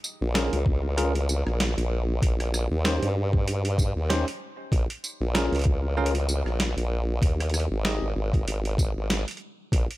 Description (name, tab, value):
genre	glitch hop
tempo	96 BPM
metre	4/4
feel	swing 56% on 16ths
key	Bb dorian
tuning	A4 = 442 Hz
part	boom bap sampler-style drum kit	drums	0.0-10.0 s	hi-hat, rim click, snare drum, tambourine	-30 LUFS	equal	none
part	formant-sweep wobble bass	bass	0.2-9.9 s	Ab1 to G2	-25 LUFS	equal	chorus
part	bell-like tine electric piano	stabs	0.3-8.1 s	Db4 to Eb5	-31 LUFS	equal	medium stereo tremolo, sidechain pumping, tape echo
part	electronic kick drum	drums	0.7-9.9 s	none	-23 LUFS	equal	none
room	little or no reverb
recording	none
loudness	-23 LUFS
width	side -17 dB against mid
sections	0.0-10.0 A section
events	none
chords	0.0 Bbm7; 2.2 Eb7; 4.7 Bbm7; 7.2 Ab5